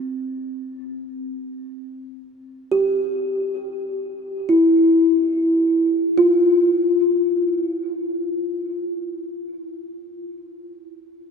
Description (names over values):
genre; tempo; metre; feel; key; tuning
ambient; free time; none; none; unclear; A4 = 440 Hz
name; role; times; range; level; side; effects
kalimba; solo; 0.0-10.5 s; C4 to G4; -19 LUFS; left 1 dB; diffuse ambient delay
room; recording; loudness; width
wet huge ambient reverb, RT60 7.7 s; dark, warm production; -17 LUFS; side -5 dB against mid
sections
0.0-6.2 A section; 6.2-10.6 B section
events
none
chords
0.0 C; 6.2 N.C.